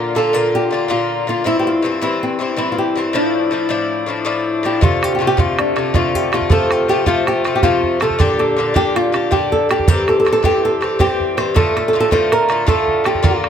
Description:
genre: celtic folk, Celtic slip jig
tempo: 107 BPM (dotted quarters)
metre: 9/8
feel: straight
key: D minor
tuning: A4 = 440 Hz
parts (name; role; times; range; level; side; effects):
- flamenco guitar; melody; 0.0-13.5 s; C4 to C5; -17 LUFS; right 2 dB; none
- Irish bouzouki; accompaniment; 0.0-13.5 s; G2 to G4; -18 LUFS; left 4 dB; none
- bodhran; percussion; 4.8-13.5 s; none; -18 LUFS; right 2 dB; none
room: light reverb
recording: close, detailed microphones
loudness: -14 LUFS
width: side -8 dB against mid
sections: 0.0-4.8 A section; 4.8-13.5 A section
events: none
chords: 0.0 Bb; 1.5 C; 3.1 Dmadd9; 4.8 Dm7; 6.5 F; 8.2 Gm; 9.9 C; 11.6 Dm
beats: 0.34 0.90 | 1.46 2.02 2.58 | 3.14 3.70 4.26 | 4.83 5.39 5.95 | 6.51 7.07 7.63 | 8.19 8.75 9.31 | 9.87 10.44 11.00 | 11.56 12.12 12.68 | 13.24

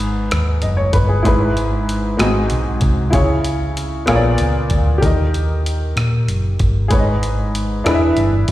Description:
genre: slow gospel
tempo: 64 BPM (dotted quarters)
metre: 6/8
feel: straight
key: G# harmonic minor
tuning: A4 = 440 Hz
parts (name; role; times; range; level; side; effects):
- clear upright piano; accompaniment; 0.0-8.5 s; G#2 to E5; -18 LUFS; left 1 dB; slapback echo
- hollow-body short-scale fingered electric bass; bass; 0.0-8.5 s; E1 to A#2; -18 LUFS; equal; none
- dusty soul sampler-style drum kit; drums; 0.0-8.5 s; hi-hat, kick drum, rim click; -20 LUFS; equal; none
room: light reverb, digital ambience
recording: live gig heard through the venue's PA, recital hall reverb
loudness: -14 LUFS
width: side -15 dB against mid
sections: 0.0-8.5 A section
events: none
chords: 0.0 G#m; 1.3 E/G#; 2.2 G#7; 3.1 C#m; 4.1 A#7b9; 5.0 D#; 6.9 G#m; 7.9 E7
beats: 0.32 | 1.26 2.20 | 3.14 4.08 | 5.03 5.97 | 6.91 7.86

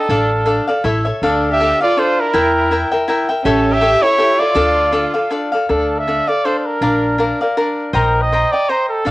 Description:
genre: mexican folk, mariachi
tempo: 161 BPM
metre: 3/4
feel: swing 55% on 8ths, rubato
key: D minor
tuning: A4 = 440 Hz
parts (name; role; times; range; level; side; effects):
- clear trumpet; melody; 0.0-9.1 s; A4 to E5; -16 LUFS; right 1 dB; none
- clear studio violin section; second line; 0.0-5.3 s; C#4 to G4; -23 LUFS; right 2 dB; cassette tape, tape echo
- cavaquinho; accompaniment; 0.0-9.1 s; D4 to Bb5; -17 LUFS; left 1 dB; cassette tape
- upright bass; bass; 0.1-9.1 s; A1 to E2; -22 LUFS; equal; tube saturation
room: moderate studio reverb, RT60 0.5 s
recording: home recording on cassette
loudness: -13 LUFS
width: side -18 dB against mid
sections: 0.0-5.7 A section; 5.7-9.1 A section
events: none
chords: 0.1 Dm/A; 0.8 A; 1.2 Dm; 2.3 Edim; 3.5 A7; 4.6 Dm; 6.8 Bb; 7.9 Eb6/Bb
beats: | 0.09 0.46 0.84 | 1.22 1.60 1.97 | 2.34 2.71 3.08 | 3.45 3.82 4.18 | 4.55 4.93 5.31 | 5.69 6.07 6.45 | 6.82 7.19 7.57 | 7.94 8.31 8.69 | 9.06

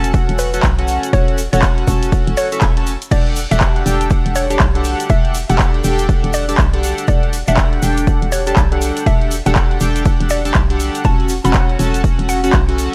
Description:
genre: deep house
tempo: 121 BPM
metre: 4/4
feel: swing 60% on 16ths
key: E dorian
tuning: A4 = 438 Hz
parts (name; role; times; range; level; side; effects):
- chorused polysynth; stabs; 0.0-12.9 s; C#4 to A5; -22 LUFS; equal; vintage 12-bit sampler grit, sidechain pumping
- hollow knocking FM bass; bass; 0.0-12.9 s; E1 to B1; -21 LUFS; equal; sidechain pumping
- punchy analog drum machine; drums; 0.0-12.9 s; crash cymbal, handclaps, hi-hat, ride cymbal; -26 LUFS; equal; none
- tube shaker; percussion; 0.0-12.9 s; none; -33 LUFS; equal; none
- electronic kick drum; drums; 0.1-12.7 s; none; -18 LUFS; equal; none
- mallet-like synth pluck; melody; 0.4-12.6 s; B4 to B5; -25 LUFS; equal; chorus, phaser, analog delay
room: little or no reverb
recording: none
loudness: -15 LUFS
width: mono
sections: 0.0-12.9 A section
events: none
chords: 0.0 F#m/E; 3.1 Em11; 11.0 F#m/E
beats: 0.14 0.64 | 1.13 1.63 2.12 2.62 | 3.12 3.61 4.11 4.60 | 5.10 5.59 6.09 6.59 | 7.08 7.58 8.07 8.57 | 9.06 9.56 10.06 10.55 | 11.05 11.54 12.04 12.54

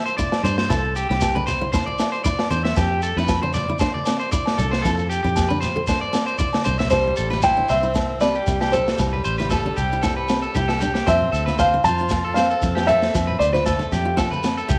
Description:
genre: highlife guitar band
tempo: 116 BPM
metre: 4/4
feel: swing 53% on 16ths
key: C major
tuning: A4 = 439 Hz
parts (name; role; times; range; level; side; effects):
- electric guitar at the edge of break-up; arpeggios; 0.0-14.8 s; G4 to E5; -27 LUFS; equal; slapback echo
- shekere; percussion; 0.1-14.8 s; none; -34 LUFS; equal; none
- picked steel-string acoustic guitar; accompaniment; 0.2-14.8 s; C4 to A4; -32 LUFS; equal; none
- crunchy breakbeat drum kit; drums; 0.2-14.8 s; kick drum, snare drum; -28 LUFS; equal; none
- agogo bells; percussion; 0.3-14.6 s; none; -33 LUFS; equal; none
- fingered electric bass; bass; 0.4-14.8 s; A1 to G2; -28 LUFS; equal; none
- congas; percussion; 0.4-14.4 s; none; -34 LUFS; equal; none
- felt-muted upright piano; melody; 6.9-14.5 s; C5 to A5; -23 LUFS; equal; none
- bright tenor saxophone; second line; 6.9-14.5 s; G3 to F4; -34 LUFS; equal; none
room: moderate echo chamber reverb, RT60 1.3 s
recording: none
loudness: -21 LUFS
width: mono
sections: 0.0-6.9 A section; 6.9-14.8 B section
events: drum fill 6.5-6.9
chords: 0.0 C; 2.8 F; 6.9 C; 11.1 F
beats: 0.18 | 0.70 1.22 1.74 2.26 | 2.78 3.29 3.81 4.33 | 4.85 5.37 5.89 6.41 | 6.92 7.45 7.96 8.48 | 9.00 9.52 10.04 10.56 | 11.08 11.60 12.12 12.63 | 13.15 13.67 14.19 14.70

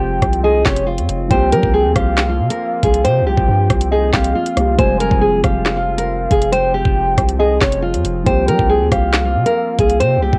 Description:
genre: hip hop, drill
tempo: 138 BPM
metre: 4/4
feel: half-time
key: F minor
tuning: A4 = 440 Hz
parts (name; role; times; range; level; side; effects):
- nylon-string guitar; melody; 0.0-10.4 s; F4 to C5; -20 LUFS; equal; low-pass filter, cassette tape, analog delay
- soft octave-layered synth lead; second line; 0.0-10.4 s; Db5 to Ab5; -23 LUFS; equal; chorus, analog delay
- felt-muted upright piano; accompaniment; 0.0-10.4 s; F3 to G4; -28 LUFS; equal; low-pass filter
- warbly tape-like pad; sustained chords; 0.0-10.4 s; F3 to F4; -29 LUFS; equal; chorus, built-in reverb
- long sustained 808-style bass; bass; 0.0-10.4 s; F1 to G3; -22 LUFS; equal; none
- drill drum kit; drums; 0.2-10.4 s; handclaps, hi-hat, kick drum, rim click, snare drum; -20 LUFS; equal; overdrive
room: light reverb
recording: home recording on cassette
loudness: -15 LUFS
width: mono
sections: 0.0-10.4 A section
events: none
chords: 0.0 Fmadd9; 1.3 C7sus4; 4.8 Fmadd9; 8.3 C7sus4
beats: 0.00 0.44 0.87 | 1.31 1.74 2.18 2.61 | 3.05 3.48 3.92 4.35 | 4.79 5.22 5.66 6.09 | 6.53 6.96 7.39 7.83 | 8.27 8.70 9.13 9.57 | 10.00

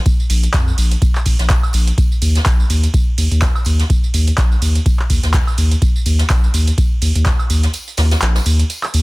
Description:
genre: acid house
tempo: 125 BPM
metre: 4/4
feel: swing 57% on 16ths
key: unclear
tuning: A4 = 440 Hz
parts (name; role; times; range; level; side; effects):
- booming analog drum machine; drums; 0.1-9.0 s; handclaps, hi-hat, ride cymbal, tambourine, woodblock; -22 LUFS; right 2 dB; none
- electronic kick drum; drums; 0.1-7.4 s; none; -15 LUFS; equal; none
- jazz brush drum kit; drums; 0.1-9.0 s; hi-hat, snare drum, tambourine; -29 LUFS; equal; sidechain pumping on hats, high-pass filter on hats, soft clipping on snare, high-pass filter on snare, sidechain pumping on perc, high-pass filter on perc, high-pass filter on room
- warm sub bass; bass; 0.3-9.0 s; Bb1 to F2; -14 LUFS; equal; sidechain pumping
room: small room ambience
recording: dense, heavily limited modern master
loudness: -13 LUFS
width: side -22 dB against mid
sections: 0.0-9.0 A section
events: kick drops out 7.7-9.0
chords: none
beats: | 0.06 0.54 1.02 1.50 | 1.98 2.46 2.94 3.42 | 3.90 4.38 4.86 5.34 | 5.82 6.30 6.78 7.26 | 7.74 8.22 8.70

